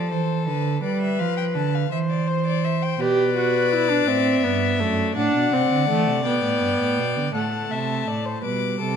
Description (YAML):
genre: classical, baroque-style fugue for string quartet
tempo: 55 BPM (dotted quarters)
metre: 6/8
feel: straight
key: unclear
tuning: A4 = 438 Hz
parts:
  - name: rich violin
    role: melody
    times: 0.0-9.0 s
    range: B4 to D6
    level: -27 LUFS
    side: left 13 dB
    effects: none
  - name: dark violin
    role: second line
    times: 0.0-9.0 s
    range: A4 to F#5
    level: -26 LUFS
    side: left 5 dB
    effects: none
  - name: rich cello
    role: bass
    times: 0.0-9.0 s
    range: F#2 to G3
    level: -25 LUFS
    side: right 5 dB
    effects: none
  - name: warm viola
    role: accompaniment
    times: 3.0-9.0 s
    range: G3 to G4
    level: -23 LUFS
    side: right 2 dB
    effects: none
room: moderate scoring stage reverb, RT60 2.0 s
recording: none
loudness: -19 LUFS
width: side -7 dB against mid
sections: 0.0-7.3 A section; 7.3-9.0 B section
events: none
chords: 0.0 Dm7; 0.8 G7; 1.9 C/E; 3.0 G/B; 4.1 Am7; 5.2 D7/A; 6.3 G; 7.3 D7/A (rootless); 8.4 G/B